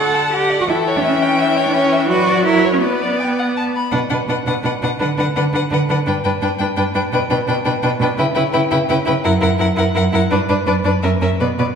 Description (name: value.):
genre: quick classical-period movement for string quartet.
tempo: 169 BPM.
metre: 3/4.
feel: straight.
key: B minor.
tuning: A4 = 440 Hz.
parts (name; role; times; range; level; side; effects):
clear violin; melody; 0.0-11.7 s; C#5 to G5; -24 LUFS; left 8 dB; none.
warm violin; second line; 0.0-11.7 s; A4 to B5; -20 LUFS; left 2 dB; none.
clear viola; accompaniment; 0.0-11.7 s; D3 to E4; -21 LUFS; equal; none.
rich cello; bass; 0.0-11.7 s; F#2 to A4; -18 LUFS; right 3 dB; none.
room: wet recital hall reverb, RT60 1.4 s.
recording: recorded in a church or concert hall.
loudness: -14 LUFS.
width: side -7 dB against mid.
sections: 0.0-3.9 A section; 3.9-11.8 B section.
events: none.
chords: 0.0 D; 0.7 A7/E (rootless); 1.7 C#dim/E; 2.1 Bm/F#; 2.5 F#7; 2.8 Bm; 5.0 Bm/D; 6.1 G; 7.1 G/B; 8.2 C#m7b5; 9.2 F#7; 10.3 G; 10.7 Bm/F# (rootless); 11.0 F#.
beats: 0.33 | 0.68 1.04 1.39 | 1.74 2.10 2.45 | 2.82 3.19 3.56 | 3.92 4.28 4.64 | 5.00 5.36 5.71 | 6.06 6.41 6.77 | 7.12 7.47 7.83 | 8.18 8.54 8.89 | 9.24 9.60 9.96 | 10.31 10.67 11.03 | 11.40.